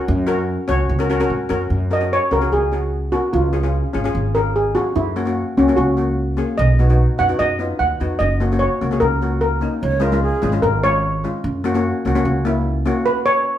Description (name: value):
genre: calypso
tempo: 148 BPM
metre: 4/4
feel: straight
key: F# major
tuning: A4 = 437 Hz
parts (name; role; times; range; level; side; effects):
- steel pan; melody; 0.0-13.6 s; C#4 to F#5; -18 LUFS; equal; none
- steel pan; accompaniment; 0.0-13.1 s; G#3 to C#5; -22 LUFS; left 2 dB; none
- upright bass; bass; 0.1-12.9 s; F#1 to G#2; -20 LUFS; equal; none
- wooden flute; second line; 9.8-10.5 s; G#4 to C#5; -22 LUFS; right 4 dB; none
room: wet large studio reverb, RT60 0.9 s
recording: band playing live in one room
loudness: -16 LUFS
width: side -11 dB against mid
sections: 0.0-1.7 A section; 1.7-13.6 B section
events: steel pan solo 1.7-13.6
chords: 0.0 F#; 3.3 C#; 5.0 F#7; 6.6 B; 8.2 F#; 9.8 C#; 11.4 F#7; 13.1 N.C.